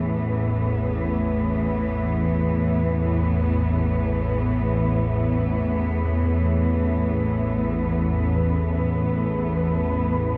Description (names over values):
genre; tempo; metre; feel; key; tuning
dark ambient drone; free time; none; none; unclear; A4 = 441 Hz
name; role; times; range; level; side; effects
muted chamber cello section; sustained chords; 0.0-10.4 s; A2 to B3; -26 LUFS; equal; none
organ-like drone; drone; 0.0-10.4 s; A1 to E2; -25 LUFS; equal; ensemble chorus, built-in reverb
wind-like tuned noise texture; texture; 9.0-10.4 s; B4; -34 LUFS; equal; built-in reverb
room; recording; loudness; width
wet huge ambient reverb, RT60 8.4 s; dark, warm production; -23 LUFS; mono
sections
0.0-10.4 A section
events
filter sweep on synth drone 0.0-10.4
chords
0.0 Asus2